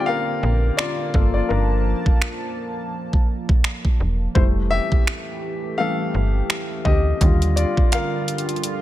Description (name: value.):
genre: contemporary R&B.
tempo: 84 BPM.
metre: 4/4.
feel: swing 58% on 16ths.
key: F major.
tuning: A4 = 440 Hz.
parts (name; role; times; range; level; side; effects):
warm baby grand piano; accompaniment; 0.0-8.8 s; D3 to G5; -24 LUFS; left 5 dB; none.
chorused pulse-width pad; sustained chords; 0.0-8.8 s; D3 to A5; -28 LUFS; right 2 dB; sidechain pumping.
slap-like FM bass; bass; 0.4-7.8 s; E1 to Eb2; -20 LUFS; equal; none.
smooth R&B drum kit; drums; 0.8-8.8 s; finger snaps, hi-hat, kick drum; -19 LUFS; right 1 dB; none.
room: digital ambience.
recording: none.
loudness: -18 LUFS.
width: side -14 dB against mid.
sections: 0.0-8.8 A section.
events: break 0.0-4.4; grand piano solo 0.0-8.8.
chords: 0.0 Bb6; 1.1 Gm9; 4.4 Fmaj9; 7.2 Ebmaj9.